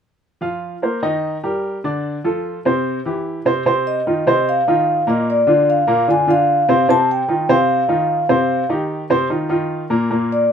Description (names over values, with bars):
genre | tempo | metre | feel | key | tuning
jazz | 149 BPM | 4/4 | straight | unclear | A4 = 440 Hz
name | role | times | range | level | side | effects
warm upright piano | accompaniment | 0.4-10.4 s | Bb2 to F5 | -17 LUFS | equal | none
vibraphone with soft mallets | melody | 3.9-10.5 s | D5 to A5 | -16 LUFS | equal | none
room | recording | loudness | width
light reverb | minimal, uncompressed stereo recording | -15 LUFS | side -7 dB against mid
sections
0.4-3.7 A section; 3.7-10.5 B section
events
none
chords
0.4 F7sus4; 1.2 Eb; 2.0 Dm7; 2.8 C; 3.7 F5; 5.3 Bb; 6.9 F5; 8.5 Cm; 9.3 Bbsus4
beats
| 0.42 0.82 1.23 1.63 | 2.04 2.44 2.85 3.25 | 3.66 4.06 4.46 4.87 | 5.27 5.67 6.08 6.48 | 6.88 7.29 7.69 8.09 | 8.50 8.90 9.30 9.71 | 10.11 10.51